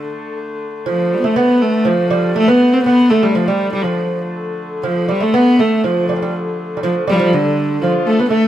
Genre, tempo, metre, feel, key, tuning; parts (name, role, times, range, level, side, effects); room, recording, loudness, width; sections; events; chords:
medieval dance; 121 BPM; 2/4; straight; D dorian; A4 = 441 Hz
warm viola da gamba; melody; 0.0-8.5 s; D3 to C4; -15 LUFS; left 1 dB
rich hurdy-gurdy; drone; 0.0-8.5 s; D3 to A3; -25 LUFS; left 2 dB
lute; second line; 0.9-8.5 s; D3 to B3; -18 LUFS; right 5 dB
dark fiddle; second line; 7.8-8.5 s; F4 to A4; -22 LUFS; left 5 dB
moderate stone room reverb, RT60 0.9 s; band playing live in one room; -13 LUFS; side -12 dB against mid
0.4-8.3 A section